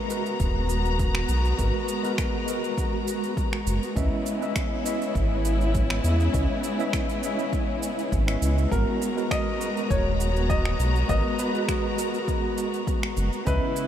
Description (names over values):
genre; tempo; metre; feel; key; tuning
sunset chillout; 101 BPM; 4/4; swing 53% on 16ths; G# minor; A4 = 440 Hz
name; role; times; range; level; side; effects
mellow tine electric piano; accompaniment; 0.0-13.9 s; G#3 to E5; -30 LUFS; equal; overdrive, medium stereo tremolo, auto-pan, analog delay
warm symphonic string section; sustained chords; 0.0-13.9 s; C#3 to A#5; -29 LUFS; left 1 dB; none
electronic shaker and finger snaps; drums; 0.1-13.9 s; none; -36 LUFS; right 2 dB; overdrive, small room ambience
round analog bass; bass; 0.4-13.6 s; D#1 to E2; -24 LUFS; equal; none
electronic kick drum; drums; 0.4-13.6 s; none; -29 LUFS; equal; overdrive, small room ambience
clear concert grand piano; melody; 8.7-13.9 s; A#4 to D#5; -31 LUFS; left 1 dB; ping-pong delay
room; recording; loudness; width
moderate huge ambient reverb, RT60 8.1 s; dreamy mix soaked in reverb; -23 LUFS; side -10 dB against mid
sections
0.0-13.9 A section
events
none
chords
0.0 G#m9; 4.0 C#m9; 8.7 G#m9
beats
0.40 0.99 | 1.59 2.18 2.78 3.37 | 3.96 4.56 5.15 5.75 | 6.34 6.93 7.53 8.12 | 8.72 9.31 9.90 10.50 | 11.09 11.69 12.28 12.88 | 13.47